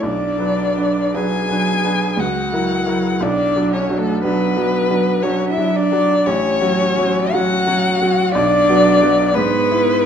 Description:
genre	classical, slow romantic movement for piano trio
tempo	58 BPM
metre	3/4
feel	uneven beats, rubato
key	unclear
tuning	A4 = 440 Hz
part	warm violin	melody	0.0-10.1 s	A4 to G#5	-18 LUFS	left 4 dB	none
part	clear cello	second line	0.0-10.1 s	A3 to G#4	-22 LUFS	right 6 dB	none
part	bright grand piano	accompaniment	0.0-10.1 s	A1 to B4	-19 LUFS	right 1 dB	none
room	wet recital hall reverb, RT60 1.3 s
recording	dark, warm production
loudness	-14 LUFS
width	side -8 dB against mid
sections	0.0-10.1 A section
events	none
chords	0.0 Bm; 2.2 F#7/C#; 3.2 Bm; 6.3 F#m/A; 8.3 Bm; 9.4 E/G#

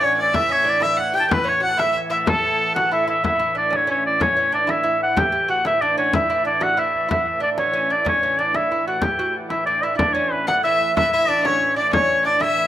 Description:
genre	medieval dance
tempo	124 BPM (dotted quarters)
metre	6/8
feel	straight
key	A mixolydian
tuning	A4 = 440 Hz
part	clear shawm	melody	0.0-12.7 s	A4 to A5	-18 LUFS	equal	tape echo
part	lute	second line	0.0-12.7 s	A3 to G4	-25 LUFS	right 3 dB	none
part	rich fiddle	second line	0.0-3.0, 10.5-12.7 s	A4 to G5	-25 LUFS	left 3 dB	none
part	pipe organ, strings celeste	drone	0.0-12.7 s	A2 to E3	-32 LUFS	equal	none
part	frame drum	percussion	0.0-12.7 s	none	-24 LUFS	left 3 dB	none
room	wet studio reverb, RT60 0.6 s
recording	rough home demo mix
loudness	-17 LUFS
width	side -12 dB against mid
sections	0.0-3.2 A section; 3.2-11.0 B section; 11.0-12.7 B section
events	none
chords	none

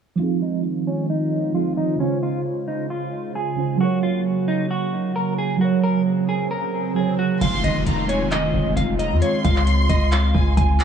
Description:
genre	hip hop, trap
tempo	133 BPM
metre	4/4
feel	half-time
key	F phrygian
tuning	A4 = 440 Hz
part	clean electric guitar	melody	0.2-10.8 s	Db4 to Ab5	-26 LUFS	equal	low-pass filter, analog delay
part	mellow tine electric piano	accompaniment	0.2-7.4 s	Db3 to Db5	-22 LUFS	right 6 dB	medium stereo tremolo, low-pass filter
part	warm analog pad	sustained chords	0.2-10.8 s	Db3 to C5	-26 LUFS	equal	wide subtle chorus, low-pass filter
part	swell and downlifter	sound effects	6.3-10.8 s	none	-30 LUFS	right 1 dB	none
part	warm studio violin section	second line	7.4-10.8 s	F5 to C6	-28 LUFS	right 1 dB	analog delay
part	distorted 808-style bass	bass	7.4-10.8 s	F1 to F2	-20 LUFS	equal	distortion
part	booming analog drum machine	drums	7.4-10.8 s	crash cymbal, handclaps, hi-hat, kick drum	-23 LUFS	equal	none
room	light reverb, digital ambience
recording	echo-heavy mix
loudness	-19 LUFS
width	side -8 dB against mid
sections	0.2-7.4 A section; 7.4-10.8 B section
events	filter sweep 0.2-7.4; swell 6.3-7.4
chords	0.2 Fm7; 2.0 Dbmaj7; 3.8 Gb; 7.4 Fm7; 9.2 Dbmaj7

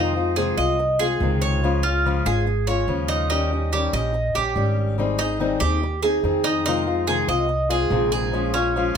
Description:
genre	latin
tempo	143 BPM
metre	4/4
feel	straight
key	unclear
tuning	A4 = 439 Hz
part	fingerpicked acoustic archtop guitar	accompaniment	0.0-9.0 s	C3 to Ab4	-24 LUFS	left 5 dB	none
part	Cuban tres	arpeggios	0.0-8.9 s	Db4 to Eb5	-23 LUFS	right 3 dB	none
part	upright bass	bass	0.0-9.0 s	Ab1 to F2	-24 LUFS	right 1 dB	none
room	light reverb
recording	close, detailed microphones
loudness	-19 LUFS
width	side -7 dB against mid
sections	0.0-9.0 A section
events	none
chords	0.0 Fm7; 1.6 Db; 3.3 Eb7; 5.0 Abmaj7; 6.7 Fm7; 8.3 Bbm7

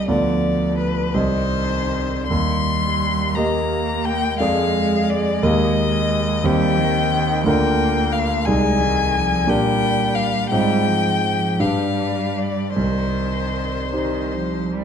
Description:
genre	classical, slow romantic movement for piano trio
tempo	50-60 BPM (dotted quarters)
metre	6/8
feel	rubato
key	C minor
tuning	A4 = 440 Hz
part	rich violin	melody	0.0-14.7 s	B4 to C6	-23 LUFS	left 7 dB	none
part	rich cello	second line	0.0-14.8 s	Eb3 to Bb3	-25 LUFS	right 5 dB	none
part	clear concert grand piano	accompaniment	0.0-14.8 s	C2 to Eb5	-20 LUFS	right 1 dB	none
room	wet recital hall reverb, RT60 1.4 s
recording	dark, warm production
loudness	-17 LUFS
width	side -7 dB against mid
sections	0.0-14.8 A section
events	none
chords	0.1 Bdim/D; 1.1 Cm; 2.3 Eb; 4.4 Ddim/F; 5.4 Eb; 6.4 Cm/Eb; 7.5 Bb/D; 8.5 Ab/C; 9.5 Gm/Bb; 10.5 Fm/Ab; 11.6 G7; 12.8 Cm

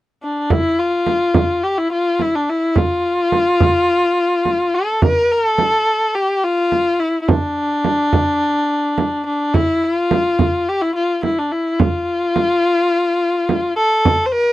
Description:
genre	Persian modal ensemble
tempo	106 BPM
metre	4/4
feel	straight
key	unclear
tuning	A4 = 440 Hz
part	clear kamancheh	melody	0.2-14.5 s	D4 to C5	-16 LUFS	left 1 dB	none
part	frame drum	percussion	0.5-14.2 s	none	-17 LUFS	right 3 dB	none
room	little or no reverb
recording	dry, close 1970s-style studio recording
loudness	-15 LUFS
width	side -15 dB against mid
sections	0.5-14.5 A section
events	none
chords	none

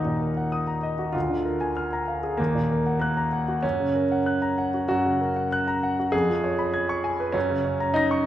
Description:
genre	classical, virtuoso piano study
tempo	97 BPM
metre	4/4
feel	rubato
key	Eb minor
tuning	A4 = 440 Hz
part	clear concert grand piano	solo	0.0-8.3 s	D2 to Bb6	-22 LUFS	equal	none
room	wet recital hall reverb, RT60 1.4 s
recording	nothing above 10.3 kHz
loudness	-22 LUFS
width	side -12 dB against mid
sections	0.0-8.3 A section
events	none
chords	0.0 Ebm; 1.1 Bb7/D; 2.4 Ebm; 3.6 Gb; 6.1 Db7/F; 7.3 Gb

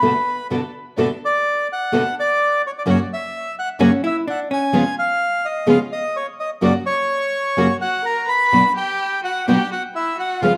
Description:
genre	tango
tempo	127 BPM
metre	4/4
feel	rubato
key	B minor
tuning	A4 = 440 Hz
part	bandoneon	melody	0.0-10.5 s	B4 to B5	-22 LUFS	equal	plate reverb, tape echo
part	warm violin	second line	0.0-0.5, 7.8-10.5 s	B3 to B4	-29 LUFS	equal	plate reverb
part	nylon-string guitar	accompaniment	0.0-10.5 s	F#2 to G#4	-20 LUFS	equal	plate reverb
part	rich symphonic string section	stabs	0.0-10.6 s	A#3 to A4	-28 LUFS	equal	plate reverb
part	hollow-body jazz guitar	second line	3.8-4.8 s	C#4 to E4	-23 LUFS	equal	plate reverb
room	wet small room reverb, RT60 0.6 s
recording	rough home demo mix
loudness	-20 LUFS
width	mono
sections	1.0-10.6 A section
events	none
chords	0.0 Bm7; 2.9 F#; 4.7 C#7; 6.6 F#; 8.5 Bm

